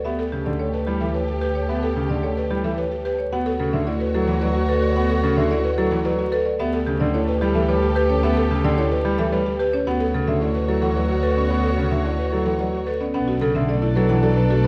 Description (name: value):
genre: classical, minimalist pattern music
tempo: 110 BPM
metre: 3/4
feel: straight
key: D major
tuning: A4 = 445 Hz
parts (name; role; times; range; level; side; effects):
- marimba with hard mallets; melody; 0.0-14.7 s; G4 to F#5; -30 LUFS; equal; none
- dark symphonic string section; sustained chords; 0.0-14.7 s; F#4 to D5; -35 LUFS; equal; none
- mellow clarinet; second line; 0.1-14.7 s; D4 to G4; -33 LUFS; equal; none
- clear concert grand piano; accompaniment; 0.1-14.7 s; C#3 to B3; -28 LUFS; equal; none
- buzzing marimba with soft mallets; arpeggios; 0.1-14.7 s; C#4 to B4; -28 LUFS; equal; none
- warm double bass; bass; 0.1-14.7 s; B1 to D2; -26 LUFS; equal; none
room: moderate recital hall reverb, RT60 1.6 s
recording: dark, warm production, vinyl crackle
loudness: -21 LUFS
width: mono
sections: 0.0-13.1 A section; 13.1-14.7 B section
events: none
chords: 0.1 A9sus4/D; 3.3 Dmaj9; 6.6 A9sus4/D; 9.9 Dmaj9; 13.1 Bm11